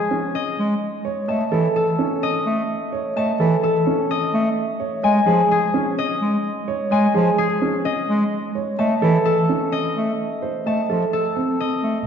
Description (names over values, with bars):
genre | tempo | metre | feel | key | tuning
classical, minimalist pattern music | 128 BPM | 4/4 | straight | unclear | A4 = 439 Hz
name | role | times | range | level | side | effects
concert harp | melody | 0.0-12.1 s | Ab4 to A5 | -23 LUFS | left 4 dB | none
warm grand piano | arpeggios | 0.1-11.7 s | C4 to Eb5 | -23 LUFS | right 4 dB | none
warm bass clarinet | accompaniment | 0.6-12.0 s | E3 to A3 | -22 LUFS | equal | none
room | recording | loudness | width
wet church reverb, RT60 2.6 s | dark, warm production, nothing above 7.7 kHz | -18 LUFS | side -7 dB against mid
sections
0.0-12.1 A section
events
none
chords
0.0 Db5; 0.8 A; 4.6 Db5; 8.3 A; 10.2 F7 (rootless)